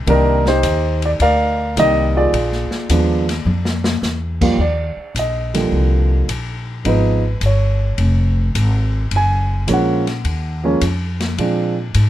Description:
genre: jazz piano trio.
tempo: 106 BPM.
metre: 4/4.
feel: swing 69% on 8ths.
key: Eb major.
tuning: A4 = 444 Hz.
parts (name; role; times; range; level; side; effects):
upright bass; bass; 0.0-12.1 s; F1 to Bb2; -18 LUFS; equal; none.
dark grand piano; melody; 0.1-11.7 s; Eb2 to Ab5; -17 LUFS; right 2 dB; none.
open jazz drum kit; drums; 0.1-12.1 s; crash cymbal, hi-hat, kick drum, ride cymbal, snare drum, toms; -25 LUFS; left 3 dB; none.
room: little or no reverb.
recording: close, detailed microphones.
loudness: -15 LUFS.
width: side -13 dB against mid.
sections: 0.0-4.6 A section; 4.6-12.1 B section.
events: drum fill 3.5-4.0; grand piano solo 4.6-12.1.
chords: 0.1 Cm9; 2.3 Bb7; 4.6 Ebmaj7; 6.8 Db7; 9.1 Gbmaj7; 11.4 Bb7.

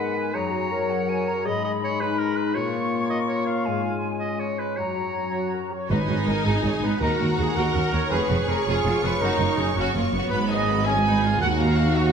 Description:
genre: cinematic, heroic adventure film score.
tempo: 109 BPM (dotted quarters).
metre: 6/8.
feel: straight.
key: G# dorian.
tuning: A4 = 440 Hz.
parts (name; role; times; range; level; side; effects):
bright small flute group; second line; 0.0-5.7 s; F#5 to C#6; -31 LUFS; left 2 dB; none.
clear oboe; second line; 0.0-5.7 s; A#4 to E#5; -30 LUFS; right 2 dB; none.
mellow clarinet; second line; 0.0-5.7 s; D#4 to A#4; -31 LUFS; equal; none.
warm French horn section; sustained chords; 0.0-5.7 s; F#3 to A#3; -29 LUFS; left 5 dB; none.
concert harp; arpeggios; 0.0-12.1 s; E#2 to A#5; -31 LUFS; left 7 dB; none.
clear trumpet section; stabs; 5.3-12.1 s; F#4 to G#5; -26 LUFS; right 2 dB; none.
clear studio violin section; melody; 5.9-12.1 s; F#5 to C#6; -33 LUFS; equal; none.
clear symphonic violin section; second line; 5.9-12.1 s; B3 to F#5; -31 LUFS; left 1 dB; none.
bright symphonic viola section; accompaniment; 5.9-12.1 s; A#3 to A#4; -28 LUFS; right 2 dB; none.
clear symphonic double bass section; bass; 5.9-12.1 s; E#1 to D#2; -27 LUFS; right 2 dB; none.
rich symphonic cello section; bass; 5.9-12.1 s; D#2 to G#2; -26 LUFS; right 3 dB; none.
timpani; percussion; 5.9-6.4 s; G#2; -30 LUFS; left 1 dB; none.
room: wet scoring stage reverb, RT60 1.4 s.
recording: none.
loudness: -21 LUFS.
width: side -6 dB against mid.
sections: 0.0-5.9 A section; 5.9-12.1 B section.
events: build-up 0.0-5.9.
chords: 0.4 F#add9; 1.5 G#m; 2.6 A#m; 3.7 C#/G#; 4.8 F#; 5.9 G#m; 7.0 D#m; 8.1 C#/E#; 9.2 F#; 10.3 G#m; 11.4 D#m.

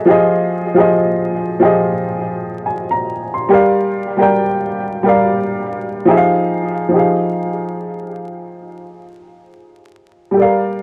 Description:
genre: hip hop.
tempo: 70 BPM.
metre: 4/4.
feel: swing 60% on 16ths.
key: F dorian.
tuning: A4 = 442 Hz.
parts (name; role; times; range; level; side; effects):
warm upright piano; solo; 0.0-10.8 s; F3 to C6; -16 LUFS; equal; cassette tape, low-pass filter, tape echo.
room: moderate studio reverb, RT60 0.6 s.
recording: home recording on cassette, vinyl crackle.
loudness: -16 LUFS.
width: mono.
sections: 0.0-6.9 A section; 6.9-10.8 B section.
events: none.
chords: 0.1 Fm9; 3.5 Gm7; 6.1 Fm9.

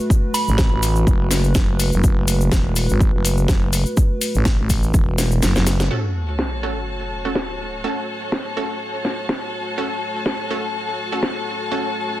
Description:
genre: bass house.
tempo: 124 BPM.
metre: 4/4.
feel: swing 56% on 16ths.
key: F# minor.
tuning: A4 = 435 Hz.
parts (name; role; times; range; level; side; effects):
dark analog pad; sustained chords; 0.0-12.2 s; A3 to C#5; -29 LUFS; equal; chorus, sidechain pumping.
electronic kick drum; drums; 0.1-5.0 s; none; -17 LUFS; equal; none.
cabasa; percussion; 0.1-5.9 s; none; -27 LUFS; left 3 dB; none.
soft synth bell; melody; 0.3-0.8 s; B5; -26 LUFS; right 5 dB; chorus, phaser, digital delay.
house drum kit; drums; 0.3-11.3 s; hi-hat, snare drum; -24 LUFS; equal; low-pass filter on hats, low-pass filter on snare, low-pass filter on room.
growling FM bass; bass; 0.5-5.9 s; E1 to A1; -18 LUFS; equal; overdrive, sidechain pumping.
orchestra-hit-like synth stab; stabs; 5.9-12.2 s; A3 to A4; -27 LUFS; right 2 dB; built-in reverb, sidechain pumping, digital delay.
sub drop; sound effects; 5.9-7.8 s; none; -26 LUFS; equal; none.
rich studio string section; texture; 5.9-12.2 s; F#4 to A5; -26 LUFS; left 2 dB; sidechain pumping.
room: light reverb, digital ambience.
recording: dense, heavily limited modern master.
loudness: -17 LUFS.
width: side -15 dB against mid.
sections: 0.0-5.9 A section; 5.9-12.2 B section.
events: drop 0.0-5.9; drum fill 5.2-5.9; kick drops out 5.4-5.9; band accent 5.8; impact 5.9-7.8.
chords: 0.0 F#m.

